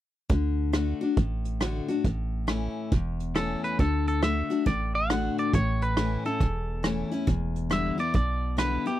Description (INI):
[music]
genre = honky-tonk and classic country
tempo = 138 BPM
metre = 4/4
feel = swing 64% on 8ths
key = D major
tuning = A4 = 440 Hz
[part]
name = picked steel-string acoustic guitar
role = accompaniment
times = 0.3-9.0 s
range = E2 to F#4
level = -29 LUFS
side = left 4 dB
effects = none
[part]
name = tight sequencer bass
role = bass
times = 0.3-8.8 s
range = E1 to D2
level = -28 LUFS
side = right 1 dB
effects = none
[part]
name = vintage brush drum kit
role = drums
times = 0.3-8.9 s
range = hi-hat, kick drum, rim click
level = -27 LUFS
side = right 1 dB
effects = none
[part]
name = twangy electric guitar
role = melody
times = 3.4-9.0 s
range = G4 to F#5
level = -30 LUFS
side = right 1 dB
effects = none
[sound]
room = little or no reverb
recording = dry, close 1970s-style studio recording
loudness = -24 LUFS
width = side -13 dB against mid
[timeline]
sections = 0.3-3.8 A section; 3.8-9.0 B section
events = none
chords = 0.3 D; 2.0 A; 3.8 D; 5.5 A; 7.3 Em7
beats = | 0.30 0.74 1.17 1.61 | 2.05 2.48 2.92 3.35 | 3.79 4.23 4.66 5.10 | 5.53 5.97 6.41 6.84 | 7.28 7.71 8.15 8.58